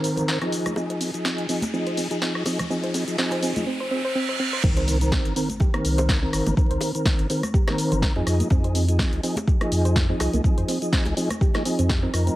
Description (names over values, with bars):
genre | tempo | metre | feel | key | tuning
deep house | 124 BPM | 4/4 | swing 56% on 16ths | unclear | A4 = 441 Hz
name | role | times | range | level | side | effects
mellow tonewheel organ | stabs | 0.0-12.4 s | Eb3 to Bb4 | -26 LUFS | equal | chorus vibrato, slow rotary speaker, sidechain pumping, digital delay
deep house drum kit | drums | 0.0-12.4 s | cabasa, crash cymbal, hi-hat, rim click, snare drum | -29 LUFS | left 1 dB | high-pass filter on hats, high-pass filter on perc, high-pass filter on snare, high-pass filter on cymbals, high-pass filter on room
riser, reverse cymbal and impact | sound effects | 0.9-6.6 s | none | -32 LUFS | right 2 dB | none
soft round pluck | arpeggios | 0.2-12.3 s | Bb3 to C5 | -30 LUFS | right 2 dB | chorus, sidechain pumping, digital delay
congas and bongos | percussion | 0.2-12.4 s | none | -32 LUFS | equal | sidechain pumping on perc
warm sub bass | bass | 4.6-12.3 s | G1 to F2 | -23 LUFS | equal | sidechain pumping
electronic kick drum | drums | 4.6-12.0 s | none | -21 LUFS | equal | none
room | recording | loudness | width
light reverb, digital ambience | vinyl crackle | -20 LUFS | side -16 dB against mid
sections
0.0-4.6 A section; 4.6-12.4 B section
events
build-up 0.0-4.6; filter sweep on synth arpeggio sound 0.0-4.6; riser 0.9-4.6; reverse cymbal 3.7-4.6; drop 4.6-12.4; impact 4.6-6.6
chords
0.0 Cm7; 0.5 Fm7; 4.6 Cm7; 8.3 Fm7